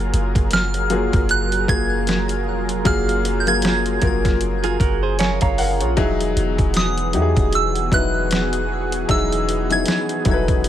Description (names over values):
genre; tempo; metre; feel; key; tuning
contemporary R&B; 77 BPM; 4/4; swing 58% on 16ths; unclear; A4 = 442 Hz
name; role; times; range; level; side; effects
warm grand piano; accompaniment; 0.0-10.7 s; F#3 to A#5; -23 LUFS; left 3 dB; none
lush unison pad; sustained chords; 0.0-10.7 s; E3 to A#4; -26 LUFS; right 1 dB; chorus
clean 808-style bass; bass; 0.0-10.7 s; E1 to E2; -23 LUFS; equal; none
detuned 8-bit digital drum machine; drums; 0.1-10.7 s; hi-hat, kick drum, snare drum; -21 LUFS; equal; overdrive
soft synth bell; melody; 0.5-10.5 s; D#6 to G#6; -24 LUFS; right 2 dB; chorus, phaser, ping-pong delay
direct-recorded clean electric guitar; arpeggios; 4.6-5.9 s; E#4 to E#5; -26 LUFS; right 9 dB; ping-pong delay
room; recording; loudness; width
little or no reverb; none; -17 LUFS; side -11 dB against mid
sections
0.0-10.7 A section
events
grand piano fill 4.8-6.0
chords
0.0 F#maj9; 6.0 Emaj9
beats
0.52 1.29 2.08 | 2.85 3.63 4.41 5.19 | 5.97 6.75 7.53 8.31 | 9.09 9.87 10.65